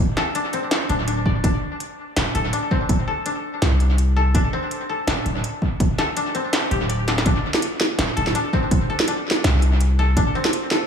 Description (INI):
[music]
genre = half-time drum and bass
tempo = 165 BPM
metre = 4/4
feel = swing 56% on 16ths, half-time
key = unclear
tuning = A4 = 440 Hz
[part]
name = koto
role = arpeggios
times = 0.0-10.9 s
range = C4 to D5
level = -25 LUFS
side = left 3 dB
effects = vintage 12-bit sampler grit, low-pass filter, dub echo
[part]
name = long sustained 808-style bass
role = bass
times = 0.0-10.3 s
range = D1 to C2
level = -20 LUFS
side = equal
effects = none
[part]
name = industrial drum kit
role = drums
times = 0.2-10.8 s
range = hi-hat, snare drum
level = -24 LUFS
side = right 1 dB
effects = dub echo
[part]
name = electronic kick drum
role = drums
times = 1.3-10.2 s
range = none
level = -21 LUFS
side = equal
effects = none
[sound]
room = light reverb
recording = echo-heavy mix, studio reverb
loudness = -18 LUFS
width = side -7 dB against mid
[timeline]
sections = 0.0-10.9 A section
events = drum fill 7.1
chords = 0.0 D5